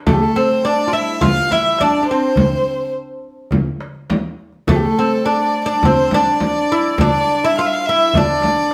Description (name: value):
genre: Arabic maqam ensemble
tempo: 104 BPM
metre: 4/4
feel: straight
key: unclear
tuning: A4 = 441 Hz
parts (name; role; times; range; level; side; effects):
- oud; melody; 0.1-8.7 s; A3 to F4; -19 LUFS; equal; none
- warm violin; second line; 0.1-8.7 s; G4 to F5; -21 LUFS; equal; none
- darbuka; percussion; 0.1-8.7 s; none; -26 LUFS; equal; none
- frame drum; percussion; 0.1-8.6 s; none; -21 LUFS; equal; none
room: wet studio reverb, RT60 0.8 s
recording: band playing live in one room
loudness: -16 LUFS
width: mono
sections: 0.1-8.7 A section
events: none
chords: none